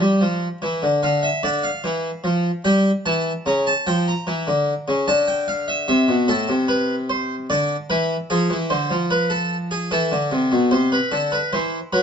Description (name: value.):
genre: classical, baroque-style two-part invention for harpsichord.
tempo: 74 BPM.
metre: 3/4.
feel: straight.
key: D minor.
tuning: A4 = 438 Hz.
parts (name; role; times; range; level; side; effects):
harpsichord; solo; 0.0-12.0 s; A2 to A#5; -18 LUFS; equal; none.
room: moderate large studio reverb, RT60 1.1 s.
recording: nothing above 7.8 kHz.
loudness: -18 LUFS.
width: side -7 dB against mid.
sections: 0.0-1.0 A section; 1.0-10.7 B section; 10.7-12.0 A section.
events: none.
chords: 0.0 Dm; 2.6 Emadd11; 3.5 C#dim7; 5.1 Dm; 5.9 Am; 7.5 Bmadd11/D; 8.3 G#dim7; 9.9 Am; 10.7 D7/C.